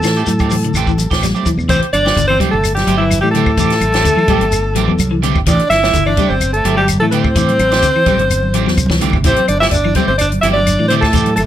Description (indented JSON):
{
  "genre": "afrobeat",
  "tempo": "127 BPM",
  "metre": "4/4",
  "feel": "straight",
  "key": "A dorian",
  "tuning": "A4 = 440 Hz",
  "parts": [
    { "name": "bright alto saxophone", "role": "melody", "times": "0.0-11.4 s", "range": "E4 to E5", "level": "-16 LUFS", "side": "equal", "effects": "slapback echo" },
    { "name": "clean electric guitar", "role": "arpeggios", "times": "0.0-11.3 s", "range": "D3 to G3", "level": "-20 LUFS", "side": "left 4 dB", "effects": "analog chorus" },
    { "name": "modern bright fingered electric bass", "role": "bass", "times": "0.0-11.5 s", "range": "G1 to A2", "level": "-18 LUFS", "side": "equal", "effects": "none" },
    { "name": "compact cocktail drum kit", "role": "drums", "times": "0.0-11.5 s", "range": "hi-hat, kick drum, snare drum", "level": "-19 LUFS", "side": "equal", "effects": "none" },
    { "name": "claves", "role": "percussion", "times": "0.0-11.5 s", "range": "none", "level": "-28 LUFS", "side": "left 5 dB", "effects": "none" },
    { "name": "shekere", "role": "percussion", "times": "0.0-11.5 s", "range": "none", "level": "-24 LUFS", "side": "left 1 dB", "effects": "none" },
    { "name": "electric guitar at the edge of break-up", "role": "stabs", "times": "0.2-11.3 s", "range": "E3 to G4", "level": "-22 LUFS", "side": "right 8 dB", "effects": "lush chorus" },
    { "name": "congas", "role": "percussion", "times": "0.3-11.5 s", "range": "none", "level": "-22 LUFS", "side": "right 2 dB", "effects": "none" },
    { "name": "breathy alto saxophone", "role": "second line", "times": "1.7-11.4 s", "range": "E3 to E4", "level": "-22 LUFS", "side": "right 2 dB", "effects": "none" }
  ],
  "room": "studio reverb",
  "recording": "none",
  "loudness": "-11 LUFS",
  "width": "side -11 dB against mid",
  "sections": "0.0-1.7 A section; 1.7-11.5 B section",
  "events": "drum fill 1.3-1.7, 8.8-9.2",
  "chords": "0.0 Am7"
}